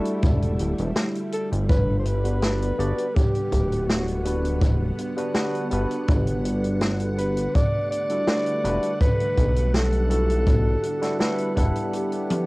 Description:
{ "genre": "vaporwave", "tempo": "82 BPM", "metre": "4/4", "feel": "straight", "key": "G major", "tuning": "A4 = 440 Hz", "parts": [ { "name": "barky tine electric piano", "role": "accompaniment", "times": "0.0-12.5 s", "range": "G3 to F#5", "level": "-29 LUFS", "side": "equal", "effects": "overdrive, lush chorus, cassette tape, analog delay" }, { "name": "soft string machine", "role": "sustained chords", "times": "0.0-12.5 s", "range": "D3 to F#5", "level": "-32 LUFS", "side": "equal", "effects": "ensemble chorus, vintage 12-bit sampler grit, cassette tape" }, { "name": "open jazz drum kit", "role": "drums", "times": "0.1-12.5 s", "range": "hi-hat, snare drum, toms", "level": "-28 LUFS", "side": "equal", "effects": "cassette tape" }, { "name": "chorused synth bass", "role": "bass", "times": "0.2-11.7 s", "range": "D1 to B1", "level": "-24 LUFS", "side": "equal", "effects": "none" }, { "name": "kick drum", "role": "drums", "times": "0.2-11.7 s", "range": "none", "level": "-22 LUFS", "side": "equal", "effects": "cassette tape" }, { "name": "breathy alto saxophone", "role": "melody", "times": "1.3-12.5 s", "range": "F#4 to D5", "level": "-27 LUFS", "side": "equal", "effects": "tape echo" } ], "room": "light reverb", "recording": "home recording on cassette", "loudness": "-20 LUFS", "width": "side -22 dB against mid", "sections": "0.0-12.5 A section", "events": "break 11.9-12.5; drum fill 12.3", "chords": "0.0 Em11; 1.7 Gmaj7; 7.5 Em11" }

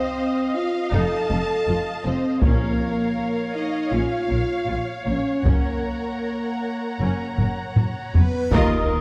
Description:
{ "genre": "cinematic, epic orchestral film score", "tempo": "79 BPM", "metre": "4/4", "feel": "straight", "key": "unclear", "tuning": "A4 = 440 Hz", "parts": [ { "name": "warm symphonic violin section", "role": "melody", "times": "0.0-9.0 s", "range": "Bb4 to A5", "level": "-35 LUFS", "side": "equal", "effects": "none" }, { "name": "warm symphonic violin section", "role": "second line", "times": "0.0-9.0 s", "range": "Bb4 to Bb5", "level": "-36 LUFS", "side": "equal", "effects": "none" }, { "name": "clear symphonic viola section", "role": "accompaniment", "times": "0.0-8.9 s", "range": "Db4 to Eb5", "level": "-34 LUFS", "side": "equal", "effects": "none" }, { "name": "dark French horn section", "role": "sustained chords", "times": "0.0-9.0 s", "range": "Bb3 to A4", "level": "-28 LUFS", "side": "equal", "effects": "none" }, { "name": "rich symphonic double bass section", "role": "bass", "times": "0.9-8.9 s", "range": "F1 to Eb2", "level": "-30 LUFS", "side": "equal", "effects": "none" }, { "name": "warm symphonic cello section", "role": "bass", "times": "0.9-8.9 s", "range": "Eb2 to Bb2", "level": "-30 LUFS", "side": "equal", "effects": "none" }, { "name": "taiko ensemble", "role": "drums", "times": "2.4-9.0 s", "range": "none", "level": "-24 LUFS", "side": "equal", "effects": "none" }, { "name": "timpani", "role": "percussion", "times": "2.4-3.5 s", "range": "Bb2", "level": "-32 LUFS", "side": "equal", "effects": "none" }, { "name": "reverse cymbal and impact", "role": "sound effects", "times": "8.5-9.0 s", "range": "none", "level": "-34 LUFS", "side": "equal", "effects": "none" }, { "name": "concert flute", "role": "second line", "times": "8.1-9.0 s", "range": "Bb4 to Cb5", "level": "-35 LUFS", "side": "equal", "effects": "none" }, { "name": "pipe organ, foundations", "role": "sustained chords", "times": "8.5-9.0 s", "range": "Bb3 to Eb5", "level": "-31 LUFS", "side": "equal", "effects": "none" }, { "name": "warm tuba", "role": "bass", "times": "8.5-8.9 s", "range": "Eb2", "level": "-32 LUFS", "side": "equal", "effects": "none" } ], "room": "moderate scoring stage reverb, RT60 2.0 s", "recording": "dark, warm production", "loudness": "-23 LUFS", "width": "mono", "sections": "0.0-8.5 A section", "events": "drum fill 7.4-8.5; reverse cymbal 8.5; band accent 8.5-9.0; impact 8.5-9.0", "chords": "0.0 F7; 2.4 Bbm; 5.5 Gb" }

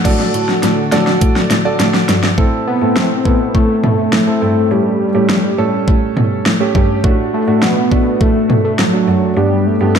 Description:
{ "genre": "synth-pop", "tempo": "103 BPM", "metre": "4/4", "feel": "straight", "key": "unclear", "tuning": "A4 = 440 Hz", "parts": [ { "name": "warm concert grand piano", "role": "accompaniment", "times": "0.0-10.0 s", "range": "A3 to D5", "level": "-18 LUFS", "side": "right 4 dB", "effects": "slapback echo" }, { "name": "lush unison pad", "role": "sustained chords", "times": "0.0-2.4 s", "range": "D3 to A4", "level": "-22 LUFS", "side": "left 1 dB", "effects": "chorus" }, { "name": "pop drum kit", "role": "drums", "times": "0.0-10.0 s", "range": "crash cymbal, hi-hat, kick drum, snare drum, toms", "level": "-15 LUFS", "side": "equal", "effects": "overdrive" }, { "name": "rich cello", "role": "bass", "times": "0.1-10.0 s", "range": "F#2 to B2", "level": "-19 LUFS", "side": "left 1 dB", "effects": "none" }, { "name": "fat analog lead", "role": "melody", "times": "2.7-10.0 s", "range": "F#3 to C4", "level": "-16 LUFS", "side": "left 1 dB", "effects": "phaser, slapback echo" } ], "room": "moderate lush hall reverb, RT60 1.8 s", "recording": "big arena sound", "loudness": "-11 LUFS", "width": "side -7 dB against mid", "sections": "0.1-2.4 A section; 2.4-10.0 B section", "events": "drum fill 0.1-2.4", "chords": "0.1 D/A; 2.4 Am; 4.7 A7; 7.0 D/A; 9.4 G" }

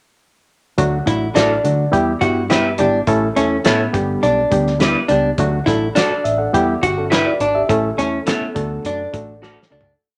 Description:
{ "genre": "uptempo 1960s-style soul", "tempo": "104 BPM", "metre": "4/4", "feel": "straight", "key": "D major", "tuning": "A4 = 438 Hz", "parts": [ { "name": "barky reed electric piano", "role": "accompaniment", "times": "0.8-9.9 s", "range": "F#3 to F#5", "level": "-21 LUFS", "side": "equal", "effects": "overdrive, spring reverb" }, { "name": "vintage muted fingered electric bass", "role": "bass", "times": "0.8-9.9 s", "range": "G1 to D3", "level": "-27 LUFS", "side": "equal", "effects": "none" }, { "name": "cloth-damped thuddy drum kit", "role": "drums", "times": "0.8-9.9 s", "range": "hi-hat, kick drum, snare drum, toms", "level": "-24 LUFS", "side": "equal", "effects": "none" }, { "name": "archtop guitar, miked and amplified", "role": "riff", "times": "1.1-9.9 s", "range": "B3 to F#4", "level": "-21 LUFS", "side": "equal", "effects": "none" }, { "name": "electric guitar through a small old amp", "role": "stabs", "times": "1.4-9.6 s", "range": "F#4 to E5", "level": "-23 LUFS", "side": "equal", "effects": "none" } ], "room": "moderate studio ambience, RT60 0.5 s", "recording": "none", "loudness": "-17 LUFS", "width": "mono", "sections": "0.8-10.0 A section", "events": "fade-out 7.7-10.0; drum fill 9.4-10.0", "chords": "0.8 D; 1.9 Em; 3.1 A; 3.9 G; 5.4 D; 6.5 Em; 7.7 A; 8.6 D" }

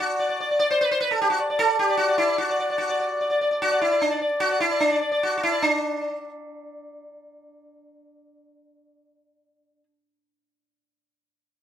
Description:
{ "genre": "indian classical", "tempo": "149 BPM", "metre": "7/4", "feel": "straight", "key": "D raga khamaj", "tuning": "A4 = 440 Hz", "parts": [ { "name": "sitar", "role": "solo", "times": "0.0-9.8 s", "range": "D4 to D5", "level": "-21 LUFS", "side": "equal", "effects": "none" } ], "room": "wet studio ambience, RT60 0.5 s", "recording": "band playing live in one room", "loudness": "-20 LUFS", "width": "side -9 dB against mid", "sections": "0.0-5.6 A section; 5.6-8.4 B section", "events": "none", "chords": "none" }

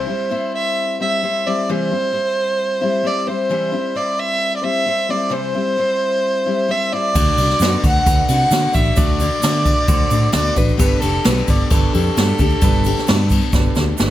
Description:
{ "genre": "folk rock and heartland rock", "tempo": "132 BPM", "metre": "4/4", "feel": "straight", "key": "unclear", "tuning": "A4 = 444 Hz", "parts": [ { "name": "dark fiddle", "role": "melody", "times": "0.0-14.0 s", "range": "A4 to F#5", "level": "-19 LUFS", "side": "right 1 dB", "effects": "none" }, { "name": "picked steel-string acoustic guitar", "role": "accompaniment", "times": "0.0-14.1 s", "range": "C3 to D5", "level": "-23 LUFS", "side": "left 4 dB", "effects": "none" }, { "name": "bright upright piano", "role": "accompaniment", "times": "7.1-14.1 s", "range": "D4 to E5", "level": "-29 LUFS", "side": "right 8 dB", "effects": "none" }, { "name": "fingered electric bass", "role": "bass", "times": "7.2-14.1 s", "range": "F1 to D3", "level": "-19 LUFS", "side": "equal", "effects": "none" }, { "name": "jazz brush drum kit", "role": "drums", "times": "7.2-14.1 s", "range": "crash cymbal, kick drum, snare drum", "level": "-17 LUFS", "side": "equal", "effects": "none" }, { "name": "tube shaker", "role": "percussion", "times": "7.2-14.1 s", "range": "none", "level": "-32 LUFS", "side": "right 10 dB", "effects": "none" } ], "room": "light reverb", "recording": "none", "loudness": "-15 LUFS", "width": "side -13 dB against mid", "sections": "0.0-14.1 A section", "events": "drum fill 13.5-14.1", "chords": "0.0 C; 7.1 D; 10.8 Gadd9" }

